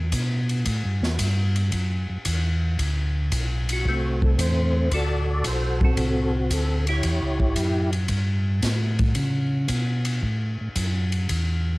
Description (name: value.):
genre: soul jazz organ trio.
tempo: 113 BPM.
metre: 4/4.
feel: swing 69% on 8ths.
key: unclear.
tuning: A4 = 437 Hz.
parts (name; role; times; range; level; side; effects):
mellow tonewheel organ; bass; 0.0-11.8 s; A1 to C#3; -23 LUFS; equal; slow rotary speaker.
swinging big-band drum kit; drums; 0.1-11.5 s; hi-hat, kick drum, ride cymbal, snare drum; -27 LUFS; equal; cassette tape.
percussive tonewheel organ; melody; 3.7-7.9 s; A3 to D5; -25 LUFS; equal; slow rotary speaker, chorus vibrato, cassette tape.
room: light reverb.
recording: home recording on cassette.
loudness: -21 LUFS.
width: side -22 dB against mid.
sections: 0.0-11.8 A section.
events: none.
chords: 0.0 A7sus2; 2.8 D9; 7.0 A9.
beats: 0.14 | 0.67 1.20 1.73 2.26 | 2.79 3.32 3.85 4.38 | 4.92 5.45 5.98 6.51 | 7.04 7.57 8.11 8.64 | 9.17 9.70 10.23 10.77 | 11.30.